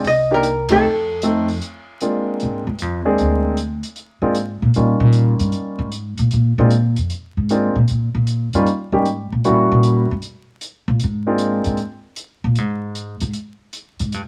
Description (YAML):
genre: jazz, small-group swing and bop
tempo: 153 BPM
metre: 4/4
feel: swing 66% on 8ths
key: Bb mixolydian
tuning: A4 = 441 Hz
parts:
  - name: archtop guitar, miked and amplified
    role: melody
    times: 0.0-1.5 s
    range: A4 to Eb5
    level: -20 LUFS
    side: equal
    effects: none
  - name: warm grand piano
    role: accompaniment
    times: 0.0-11.8 s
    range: G3 to A4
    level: -20 LUFS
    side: equal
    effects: none
  - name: upright bass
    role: bass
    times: 0.0-14.3 s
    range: C2 to Bb2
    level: -21 LUFS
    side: equal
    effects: none
  - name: compact cocktail drum kit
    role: drums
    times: 0.0-14.2 s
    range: hi-hat, kick drum, ride cymbal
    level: -35 LUFS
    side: equal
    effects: none
room: light reverb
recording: vinyl crackle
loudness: -19 LUFS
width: mono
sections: 0.0-1.6 A section; 1.6-14.3 B section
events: band accent 0.6; upright bass solo 1.6-14.3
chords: 0.1 Cm7; 0.8 F7; 1.6 Bb9; 4.8 Eb9; 6.3 Bb9; 7.9 Eb7; 9.4 Edim7; 11.0 Bb9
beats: | 0.05 0.44 0.83 1.23 | 1.62 2.01 2.40 2.79 | 3.19 3.58 3.97 4.36 | 4.75 5.14 5.54 5.93 | 6.32 6.71 7.10 7.49 | 7.88 8.28 8.67 9.06 | 9.45 9.84 10.23 10.62 | 11.01 11.40 11.79 12.18 | 12.57 12.96 13.35 13.74 | 14.13